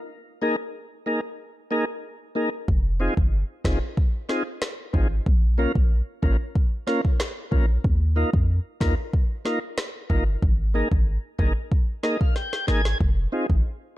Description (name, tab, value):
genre	dancehall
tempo	93 BPM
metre	4/4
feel	straight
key	F minor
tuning	A4 = 440 Hz
part	tonewheel organ	accompaniment	0.4-13.5 s	Bb3 to Ab5	-27 LUFS	equal	slow rotary speaker
part	warm 808-style bass	bass	2.7-13.6 s	F1 to F2	-22 LUFS	equal	none
part	afro-pop drum kit	drums	2.7-13.6 s	kick drum, rim click, snare drum	-23 LUFS	equal	none
room	digital ambience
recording	dark, warm production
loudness	-21 LUFS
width	side -15 dB against mid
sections	0.0-13.0 A section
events	tonewheel organ fill 11.7-13.0; drum fill 12.4-13.0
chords	0.1 Absus2; 2.7 Fm7; 5.3 Bbm; 7.8 Ebsus2; 10.4 Absus2; 13.0 Fm7